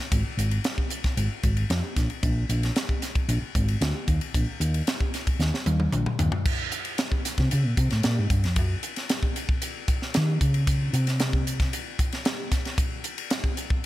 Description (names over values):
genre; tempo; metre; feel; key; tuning
electric jazz fusion; 114 BPM; 4/4; straight; unclear; A4 = 440 Hz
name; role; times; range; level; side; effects
hollow-body short-scale fingered electric bass; bass; 0.1-11.7 s; Ab1 to Eb3; -24 LUFS; equal; none
crisp fusion drum kit; drums; 0.1-13.8 s; crash cymbal, hi-hat, kick drum, ride cymbal, snare drum, toms; -26 LUFS; equal; none
room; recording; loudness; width
little or no reverb; none; -23 LUFS; side -15 dB against mid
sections
0.0-6.5 A section; 6.5-13.9 B section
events
drum fill 5.4-6.5; fingered electric bass solo 6.5-13.9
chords
none